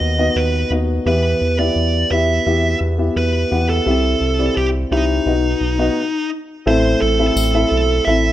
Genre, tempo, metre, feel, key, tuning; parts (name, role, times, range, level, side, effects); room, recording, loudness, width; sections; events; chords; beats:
piano-driven pop; 86 BPM; 4/4; straight; E minor; A4 = 440 Hz
high-gain lead guitar; melody; 0.0-8.3 s; D#4 to E5; -19 LUFS; right 2 dB; distortion, plate reverb
dark upright piano; accompaniment; 0.0-8.3 s; A2 to F#5; -19 LUFS; left 2 dB; plate reverb
round analog bass; bass; 0.0-8.3 s; A1 to E2; -19 LUFS; equal
tambourine; percussion; 7.4-7.5 s; -27 LUFS; left 3 dB
light reverb; rough home demo mix; -15 LUFS; side -13 dB against mid
0.0-6.7 A section; 6.7-8.3 B section
stop 6.0-6.7
0.0 B/D#; 1.1 Em; 3.9 C; 5.3 B; 6.7 Am
0.36 | 1.06 1.77 2.47 3.17 | 3.87 4.57 5.27 5.97 | 6.67 7.37 8.07